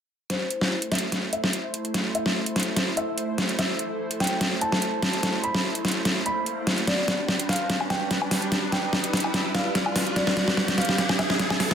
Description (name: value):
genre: heavy wobble dubstep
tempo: 146 BPM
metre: 4/4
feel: swing 53% on 16ths, half-time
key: A minor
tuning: A4 = 439 Hz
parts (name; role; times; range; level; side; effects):
- felt-muted upright piano; melody; 0.3-11.7 s; C5 to B5; -31 LUFS; equal; low-pass filter, tape echo
- supersaw pad; sustained chords; 0.3-11.7 s; G3 to C5; -31 LUFS; equal; phaser, vintage 12-bit sampler grit, low-pass filter
- dubstep drum kit; drums; 0.3-11.7 s; hi-hat, snare drum, woodblock; -24 LUFS; equal; none
- riser; sound effects; 1.8-11.7 s; none; -34 LUFS; equal; none
room: moderate digital room reverb, RT60 1.0 s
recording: dense, heavily limited modern master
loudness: -22 LUFS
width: side -8 dB against mid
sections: 0.3-11.7 A section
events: build-up 0.3-11.7; drum fill 0.3-11.7; filter sweep on supersaw synth 0.3-11.7; filter sweep on felt piano 0.3-11.7; riser 1.8-11.7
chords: 0.3 Am; 6.9 G